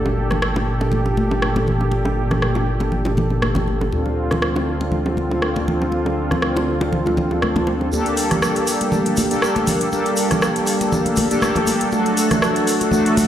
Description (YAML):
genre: afro house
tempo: 120 BPM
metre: 4/4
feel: swing 55% on 16ths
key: G minor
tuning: A4 = 440 Hz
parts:
  - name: warm analog pad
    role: sustained chords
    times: 0.0-13.3 s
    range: Bb2 to A4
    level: -23 LUFS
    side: right 1 dB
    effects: chorus
  - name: mellow synth brass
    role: stabs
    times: 0.0-13.3 s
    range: A3 to A4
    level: -21 LUFS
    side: equal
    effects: chorus, tape echo
  - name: warm sub bass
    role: bass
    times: 0.0-7.9 s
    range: G1 to D2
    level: -24 LUFS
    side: equal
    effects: none
  - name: bongos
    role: percussion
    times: 0.1-7.9 s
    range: none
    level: -27 LUFS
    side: right 1 dB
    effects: none
  - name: afro-pop drum kit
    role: drums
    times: 0.3-13.3 s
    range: hi-hat, rim click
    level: -25 LUFS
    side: equal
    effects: high-pass filter on snare, high-pass filter on hats
  - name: congas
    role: percussion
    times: 0.3-13.3 s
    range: none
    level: -24 LUFS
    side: equal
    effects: none
  - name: tube shaker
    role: percussion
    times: 7.9-13.3 s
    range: none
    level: -30 LUFS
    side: right 3 dB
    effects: none
room: moderate lush hall reverb, RT60 2.8 s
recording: played on a big sound system in a bare room, large studio reverb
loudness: -17 LUFS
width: side -10 dB against mid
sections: 0.0-7.9 A section; 7.9-13.3 B section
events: filter sweep on analog polysynth 0.0-7.9; build-up 7.9-13.3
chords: 0.0 Gmadd9; 3.9 Dm7; 7.9 Gmadd9; 11.9 D